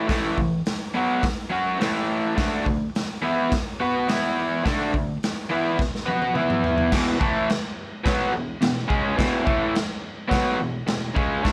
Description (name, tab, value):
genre	garage rock duo or trio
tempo	106 BPM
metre	4/4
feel	straight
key	E mixolydian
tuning	A4 = 440 Hz
part	raw garage guitar	riff	0.0-11.5 s	E2 to B4	-25 LUFS	equal	overdrive
part	raw garage drum kit	drums	0.1-11.5 s	crash cymbal, hi-hat, kick drum, snare drum, toms	-28 LUFS	equal	none
room	light reverb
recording	none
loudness	-24 LUFS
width	mono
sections	0.0-6.9 A section; 6.9-11.5 B section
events	drum fill 5.8-6.9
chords	0.0 A5; 2.4 D5; 4.1 E5; 4.7 D5; 6.4 E5; 6.9 E